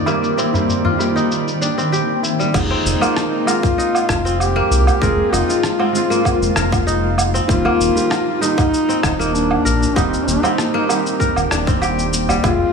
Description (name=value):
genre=organic downtempo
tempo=97 BPM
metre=4/4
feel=straight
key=C minor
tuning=A4 = 440 Hz
part: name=felt-muted upright piano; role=accompaniment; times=0.0-12.7 s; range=Eb3 to G4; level=-24 LUFS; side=right 3 dB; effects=sidechain pumping, tape echo
part: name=granular cloud pad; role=sustained chords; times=0.0-12.7 s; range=Eb3 to G5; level=-24 LUFS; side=left 2 dB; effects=built-in reverb, sidechain pumping
part: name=kora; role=arpeggios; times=0.0-12.7 s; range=G3 to Bb4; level=-21 LUFS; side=equal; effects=tape echo
part: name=drifting glass-harmonics texture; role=texture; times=0.0-2.6 s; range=D5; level=-32 LUFS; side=equal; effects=chorus, built-in reverb
part: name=dusty soul sampler-style drum kit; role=drums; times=0.1-12.6 s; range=crash cymbal, rim click, shaker, woodblock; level=-22 LUFS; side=right 2 dB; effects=overdrive, low-pass filter on perc, low-pass filter on cymbals, low-pass filter on snare
part: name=tabla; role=percussion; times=0.1-2.4, 12.4-12.7 s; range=none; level=-25 LUFS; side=right 1 dB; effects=none
part: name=round analog bass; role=bass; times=2.5-12.6 s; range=Eb1 to C2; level=-20 LUFS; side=equal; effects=sidechain pumping
part: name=electronic kick drum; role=drums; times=2.5-12.6 s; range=none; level=-19 LUFS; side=left 1 dB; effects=overdrive
part: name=warm duduk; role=melody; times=2.6-12.7 s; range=C4 to Ab4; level=-20 LUFS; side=left 2 dB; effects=digital delay
room=moderate lush hall reverb, RT60 2.4 s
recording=studio ambience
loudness=-14 LUFS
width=side -5 dB against mid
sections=0.0-2.5 A section; 2.5-12.7 B section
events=none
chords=0.0 Cm7/Eb; 2.5 Fm; 7.5 Cm7/Eb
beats=| 0.07 0.69 1.30 1.92 | 2.54 3.16 3.78 4.40 | 5.02 5.63 6.25 6.87 | 7.49 8.11 8.73 9.35 | 9.96 10.58 11.20 11.82 | 12.44